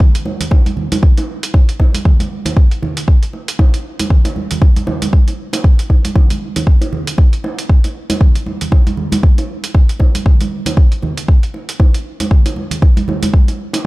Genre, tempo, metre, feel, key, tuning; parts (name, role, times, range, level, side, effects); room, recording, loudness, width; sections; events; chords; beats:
house; 117 BPM; 4/4; swing 58% on 16ths
electronic kick drum; drums; 0.0-13.5 s; -9 LUFS; equal; small room reverb
congas and bongos; percussion; 0.0-13.8 s; -20 LUFS; right 2 dB; sidechain pumping on perc
electronic hi-hat; drums; 0.1-13.8 s; -24 LUFS; right 4 dB; overdrive, small room reverb
small room ambience; -11 LUFS; side -20 dB against mid
0.0-13.9 A section
0.00 0.52 | 1.03 1.54 2.05 2.57 | 3.08 3.59 4.11 4.62 | 5.13 5.64 6.16 6.67 | 7.18 7.69 8.21 8.72 | 9.23 9.75 10.26 10.77 | 11.28 11.80 12.31 12.82 | 13.34